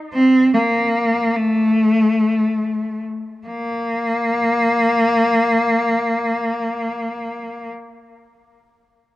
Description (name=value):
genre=pop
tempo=free time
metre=none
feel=none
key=unclear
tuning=A4 = 440 Hz
part: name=rich cello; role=melody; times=0.1-7.7 s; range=A3 to C4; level=-16 LUFS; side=equal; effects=none
room=light reverb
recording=worn, warbling old tape, cassette tape, warbly pitch drift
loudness=-15 LUFS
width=side -16 dB against mid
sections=0.0-3.5 A section; 3.5-6.9 B section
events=slowing down 0.0-3.5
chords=none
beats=free time